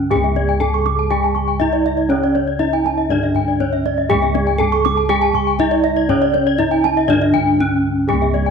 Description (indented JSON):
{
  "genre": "Balinese gamelan",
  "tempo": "120 BPM",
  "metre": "4/4",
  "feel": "straight",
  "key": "C# pelog",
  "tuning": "A4 = 439 Hz",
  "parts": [
    { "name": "gamelan-type bronze metallophone", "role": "melody", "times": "0.0-8.5 s", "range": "C#4 to A4-40c", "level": "-19 LUFS", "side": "right 1 dB", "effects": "none" },
    { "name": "gamelan-type bronze metallophone", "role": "accompaniment", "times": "0.0-8.5 s", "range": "C#3 to G#3-45c", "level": "-26 LUFS", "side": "right 11 dB", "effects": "none" },
    { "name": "gamelan-type bossed gongs", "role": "bass", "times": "0.0-8.5 s", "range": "C#2 to G#4-45c", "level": "-21 LUFS", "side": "equal", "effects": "none" },
    { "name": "gamelan-type bronze metallophone", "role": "arpeggios", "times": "0.1-8.5 s", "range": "C#5 to C#6", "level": "-20 LUFS", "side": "left 10 dB", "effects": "none" },
    { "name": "kendang", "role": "percussion", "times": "0.1-8.5 s", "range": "none", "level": "-27 LUFS", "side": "left 8 dB", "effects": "none" },
    { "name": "gamelan-type bronze metallophone", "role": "arpeggios", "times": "0.2-8.3 s", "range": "D5 to D6", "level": "-22 LUFS", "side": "right 8 dB", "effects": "none" }
  ],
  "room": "moderate echo chamber reverb, RT60 1.3 s, studio reverb",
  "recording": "1960s-style stereo with parts hard left and right",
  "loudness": "-14 LUFS",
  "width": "side -6 dB against mid",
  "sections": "0.0-8.5 A section",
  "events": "none",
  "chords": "none",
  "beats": "| 0.11 0.61 1.11 1.61 | 2.11 2.60 3.10 3.60 | 4.10 4.60 5.10 5.59 | 6.09 6.59 7.09 7.59 | 8.09"
}